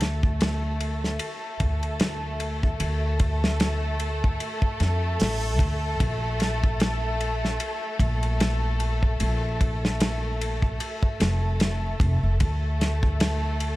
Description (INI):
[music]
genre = trip hop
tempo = 75 BPM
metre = 4/4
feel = swing 57% on 16ths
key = D minor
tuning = A4 = 440 Hz
[part]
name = warm studio violin section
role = sustained chords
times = 0.0-13.8 s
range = A3 to A4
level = -31 LUFS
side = equal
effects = none
[part]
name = upright bass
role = bass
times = 0.0-13.8 s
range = F1 to F2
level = -26 LUFS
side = equal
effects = none
[part]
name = warm soul drum kit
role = drums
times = 0.0-13.8 s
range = hi-hat, kick drum, ride cymbal, snare drum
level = -26 LUFS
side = equal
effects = none
[sound]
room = studio reverb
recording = vinyl crackle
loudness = -23 LUFS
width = side -17 dB against mid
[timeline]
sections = 0.0-13.8 A section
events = none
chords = 0.0 D5; 6.0 Bb5; 12.4 D5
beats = 0.40 1.20 2.00 | 2.80 3.60 4.40 5.20 | 6.00 6.80 7.60 8.40 | 9.20 10.00 10.80 11.60 | 12.40 13.20